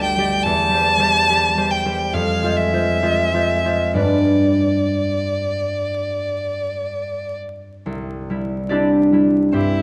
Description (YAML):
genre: classical, romantic duo for violin and harp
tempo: 60-73 BPM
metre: 4/4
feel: rubato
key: C major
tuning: A4 = 440 Hz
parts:
  - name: rich violin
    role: melody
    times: 0.0-9.8 s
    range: E4 to A5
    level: -22 LUFS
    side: equal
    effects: none
  - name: concert harp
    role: accompaniment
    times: 0.0-9.8 s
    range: G1 to D5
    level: -21 LUFS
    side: equal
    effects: none
room: moderate concert hall reverb, RT60 1.9 s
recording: close, detailed microphones, vinyl crackle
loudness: -18 LUFS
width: mono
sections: 0.0-7.9 A section; 7.9-9.8 B section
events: none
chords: 0.4 C/E; 2.1 Fm; 4.0 G; 7.9 C